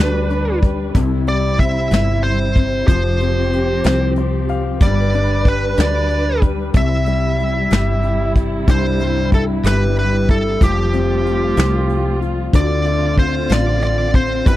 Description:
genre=six-eight pop ballad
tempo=62 BPM (dotted quarters)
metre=6/8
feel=straight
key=C major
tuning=A4 = 440 Hz
part: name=smooth overdriven lead guitar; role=melody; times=0.0-14.6 s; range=G4 to E5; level=-20 LUFS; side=right 2 dB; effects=none
part: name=warm concert grand piano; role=accompaniment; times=0.0-14.6 s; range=G2 to F5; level=-22 LUFS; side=left 8 dB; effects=none
part: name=warm studio string section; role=sustained chords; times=0.0-14.6 s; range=C3 to B4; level=-24 LUFS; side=right 2 dB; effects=none
part: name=woody fretless electric bass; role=bass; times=0.0-14.6 s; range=F1 to D2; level=-19 LUFS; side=equal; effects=ensemble chorus
part: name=soft brush drum kit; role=drums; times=0.0-14.6 s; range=hi-hat, kick drum, snare drum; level=-14 LUFS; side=equal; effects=none
room=little or no reverb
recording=dry, close 1970s-style studio recording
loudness=-14 LUFS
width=side -14 dB against mid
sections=0.0-14.6 A section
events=grand piano fill 3.8-4.8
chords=0.0 G; 1.0 C; 2.9 Fsus2; 4.8 G; 6.7 C; 10.6 Fadd9; 12.5 Dm7

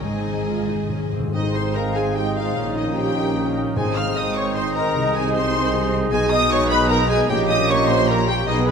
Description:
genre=classical, dramatic, fast romantic movement for symphony orchestra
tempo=151 BPM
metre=3/4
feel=rubato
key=Ab major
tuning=A4 = 440 Hz
part: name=warm symphonic violin section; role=melody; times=0.0-8.7 s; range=Eb5 to F6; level=-28 LUFS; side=left 4 dB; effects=none
part: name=rich studio violin section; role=second line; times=0.0-8.7 s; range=Ab4 to F6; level=-28 LUFS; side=left 1 dB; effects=none
part: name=rich symphonic viola section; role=accompaniment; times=0.0-8.7 s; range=C4 to F5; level=-29 LUFS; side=right 3 dB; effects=none
part: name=warm French horn section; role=sustained chords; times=0.0-8.7 s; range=Ab3 to G#4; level=-28 LUFS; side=left 2 dB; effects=none
part: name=concert harp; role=arpeggios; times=0.0-8.7 s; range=Ab2 to Eb5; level=-28 LUFS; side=left 8 dB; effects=none
part: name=rich symphonic cello section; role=bass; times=0.0-8.7 s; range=Ab2 to C3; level=-29 LUFS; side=right 4 dB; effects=none
part: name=warm symphonic double bass section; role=bass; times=0.0-8.7 s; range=Ab1 to C2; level=-29 LUFS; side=right 4 dB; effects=none
part: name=timpani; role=percussion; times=0.1-1.3, 3.8-4.3 s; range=Ab2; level=-30 LUFS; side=left 1 dB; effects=none
part: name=dark clarinet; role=second line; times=1.3-8.7 s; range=Eb4 to F5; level=-28 LUFS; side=right 1 dB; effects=none
part: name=mellow flute section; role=second line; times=1.3-8.7 s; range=Bb4 to F5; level=-29 LUFS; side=left 3 dB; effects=none
part: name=warm oboe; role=second line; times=1.3-8.7 s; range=D#4 to G#4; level=-29 LUFS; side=right 2 dB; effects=none
part: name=dark bassoon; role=accompaniment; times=1.3-8.7 s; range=Ab3 to Db4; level=-29 LUFS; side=right 2 dB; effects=none
part: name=clear trombone section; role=sustained chords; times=1.3-8.7 s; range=Bb2 to Bb3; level=-32 LUFS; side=right 4 dB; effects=none
part: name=dark tuba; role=bass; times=1.3-8.7 s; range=Ab1 to C2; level=-29 LUFS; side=right 4 dB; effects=none
room=wet scoring stage reverb, RT60 1.8 s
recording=none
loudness=-18 LUFS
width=side -6 dB against mid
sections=0.0-1.3 A section; 1.3-8.7 A section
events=timpani fill 0.0-1.3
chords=0.0 Ab; 2.6 Eb7/Bb; 3.8 Ab; 5.0 Ab/C; 6.1 G#m/B; 7.3 Gdim/Bb

